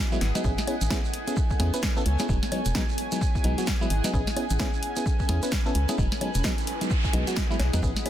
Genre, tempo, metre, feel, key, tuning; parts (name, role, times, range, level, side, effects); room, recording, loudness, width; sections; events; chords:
UK garage, two-step garage; 130 BPM; 4/4; swing 60% on 16ths; A lydian; A4 = 441 Hz
warm analog pad; sustained chords; 0.0-8.1 s; G#5 to B5; -37 LUFS; right 3 dB; chorus, sidechain pumping
granular cloud pad; texture; 0.0-8.1 s; B3 to G#5; -35 LUFS; equal; built-in reverb, sidechain pumping
FM electric piano; stabs; 0.1-8.1 s; F#3 to B4; -30 LUFS; equal; chorus, digital delay
shekere; percussion; 0.1-8.0 s; -40 LUFS; right 6 dB
organ-like FM bass; bass; 0.2-7.9 s; E1 to E2; -25 LUFS; equal; sidechain pumping
punchy analog drum machine; drums; 0.2-8.1 s; bongos, hi-hat, snare drum; -31 LUFS; equal; overdrive
electronic kick drum; drums; 0.4-7.9 s; -27 LUFS; equal; overdrive
noise sweep; sound effects; 6.5-7.8 s; -37 LUFS; right 1 dB
light reverb; dense, heavily limited modern master; -23 LUFS; side -11 dB against mid
0.0-8.1 A section
noise sweep 6.5-7.8
0.4 Amaj9; 2.3 Emaj9; 4.1 Amaj9; 6.0 Emaj9